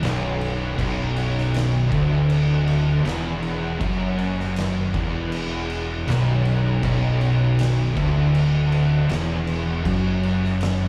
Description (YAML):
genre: stoner and doom metal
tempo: 79 BPM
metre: 4/4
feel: straight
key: B minor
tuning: A4 = 440 Hz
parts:
  - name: distorted electric guitar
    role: riff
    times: 0.0-10.9 s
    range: B1 to F#2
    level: -34 LUFS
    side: equal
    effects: none
  - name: fuzz guitar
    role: riff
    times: 0.0-10.9 s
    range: B1 to F#2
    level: -26 LUFS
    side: equal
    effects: distortion
  - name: thick fuzz guitar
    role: riff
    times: 0.0-10.9 s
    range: B1 to F#2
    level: -26 LUFS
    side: equal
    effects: distortion
  - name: fuzz fingered electric bass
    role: bass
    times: 0.0-10.9 s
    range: B0 to F#1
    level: -31 LUFS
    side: equal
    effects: overdrive
  - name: oversized low-tuned drum kit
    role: drums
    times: 0.0-10.8 s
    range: crash cymbal, kick drum, snare drum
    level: -32 LUFS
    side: equal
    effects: none
room: light reverb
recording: live gig heard through the venue's PA, club ambience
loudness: -22 LUFS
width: mono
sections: 0.0-10.9 A section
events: none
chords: 0.0 Bm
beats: 0.03 | 0.78 1.54 2.29 3.05 | 3.81 4.56 5.32 6.07 | 6.83 7.58 8.34 9.10 | 9.85 10.61